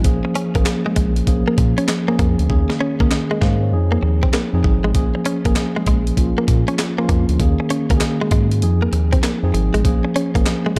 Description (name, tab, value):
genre	R&B, new jack swing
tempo	98 BPM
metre	4/4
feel	swing 65% on 16ths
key	Bb minor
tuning	A4 = 440 Hz
part	mellow tine electric piano	accompaniment	0.0-10.8 s	Eb3 to F5	-23 LUFS	equal	none
part	round analog bass	bass	0.0-10.8 s	Ab1 to Bb2	-21 LUFS	equal	none
part	breakbeat sampler-style drum kit	drums	0.0-10.8 s	handclaps, hi-hat, kick drum, snare drum	-22 LUFS	equal	none
part	direct-recorded clean electric guitar	riff	0.2-10.8 s	Ab3 to Db4	-26 LUFS	equal	analog chorus
room	light reverb, digital ambience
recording	dark, warm production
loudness	-18 LUFS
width	mono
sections	0.0-10.8 A section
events	hi-hats muted 2.5-4.9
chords	0.0 Bbm7; 2.5 Eb7sus4; 3.7 Fm7; 4.9 Bbm7; 7.4 Eb7sus4; 8.6 Fm7; 9.8 Bbm7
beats	| 0.05 0.66 1.27 1.89 | 2.50 3.11 3.72 4.33 | 4.95 5.56 6.17 6.78 | 7.39 8.01 8.62 9.23 | 9.84 10.46